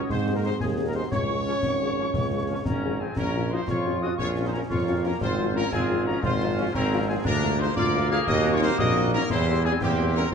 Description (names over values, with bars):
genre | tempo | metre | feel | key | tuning
military-style march for wind band | 117 BPM (dotted quarters) | 6/8 | straight | unclear | A4 = 440 Hz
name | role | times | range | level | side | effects
mellow euphonium | second line | 0.0-3.0 s | Ab3 to Db4 | -33 LUFS | right 7 dB | none
warm woodwind section | second line | 0.0-10.2 s | Bb3 to Db5 | -32 LUFS | left 1 dB | none
dark trumpet section | melody | 0.1-10.3 s | G4 to F5 | -32 LUFS | left 1 dB | none
mellow hollow piccolo | second line | 0.1-10.3 s | G5 to F6 | -34 LUFS | left 3 dB | none
clear tuba | bass | 0.1-10.3 s | Ab1 to Ab2 | -26 LUFS | right 2 dB | none
concert snare drum, concert bass drum and clash cymbals | drums | 0.1-10.3 s | none | -31 LUFS | left 2 dB | none
dark French horn section | accompaniment | 0.3-10.2 s | F3 to Ab4 | -32 LUFS | left 5 dB | none
clear trombone section | sustained chords | 0.4-10.3 s | F3 to F4 | -32 LUFS | right 2 dB | none
room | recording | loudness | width
wet large studio reverb, RT60 1.3 s | dark, warm production | -22 LUFS | side -6 dB against mid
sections
0.0-3.2 A section; 3.2-10.3 A section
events
none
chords
0.1 Ab5; 1.1 Db; 3.2 Bbm; 5.2 Fm/Ab; 7.3 Bb7/D; 8.3 Ebm; 9.3 C7/E